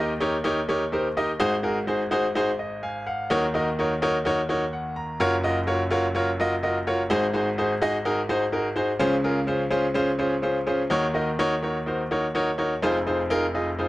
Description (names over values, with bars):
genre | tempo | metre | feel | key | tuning
soul | 126 BPM | 4/4 | straight | unclear | A4 = 440 Hz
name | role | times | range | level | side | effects
bright baby grand piano | solo | 0.0-13.9 s | F1 to Bb5 | -22 LUFS | equal | none
room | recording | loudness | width
light reverb | dark, warm production | -22 LUFS | side -17 dB against mid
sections
0.0-10.9 A section; 10.9-13.9 B section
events
grand piano fill 2.6-3.3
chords
0.0 Eb7; 1.4 Ab7; 3.3 Ebm7; 5.2 Gbmaj7; 7.1 Ab7; 9.0 Dbmaj7; 10.9 Ebm7; 12.8 Fm7